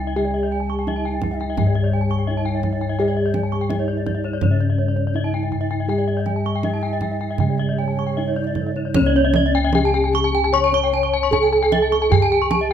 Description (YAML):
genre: Balinese gamelan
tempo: 76-85 BPM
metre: 4/4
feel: straight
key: C# pelog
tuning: A4 = 437 Hz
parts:
  - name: gamelan-type bronze metallophone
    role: melody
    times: 0.0-12.7 s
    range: C#4 to C#5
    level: -24 LUFS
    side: equal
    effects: none
  - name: breathy bright low xiao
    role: second line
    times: 0.0-8.8 s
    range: A4-41c to A5-38c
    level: -32 LUFS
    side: right 5 dB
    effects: none
  - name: gamelan-type bronze metallophone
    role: accompaniment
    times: 0.0-9.0 s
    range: C#3 to G#3-45c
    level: -28 LUFS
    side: right 3 dB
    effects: none
  - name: gamelan-type bronze metallophone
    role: arpeggios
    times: 0.0-12.7 s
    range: C#5 to C#6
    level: -26 LUFS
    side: left 7 dB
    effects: none
  - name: gamelan-type bossed gongs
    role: bass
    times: 0.0-12.7 s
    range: C#2 to G#4-45c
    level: -22 LUFS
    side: left 2 dB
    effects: none
  - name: gamelan-type bronze metallophone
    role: arpeggios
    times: 0.2-12.7 s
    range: C#5 to C#6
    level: -27 LUFS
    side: right 8 dB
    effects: none
  - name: kendang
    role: percussion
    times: 0.7-12.7 s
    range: none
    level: -23 LUFS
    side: right 4 dB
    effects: none
room: light reverb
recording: close, detailed microphones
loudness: -17 LUFS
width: side -9 dB against mid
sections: 0.0-8.9 A section; 8.9-12.7 B section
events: none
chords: none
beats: | 0.17 0.87 1.57 2.28 | 2.98 3.69 4.41 5.14 | 5.88 6.63 7.39 8.17 | 8.95 9.74 10.53 11.32 | 12.11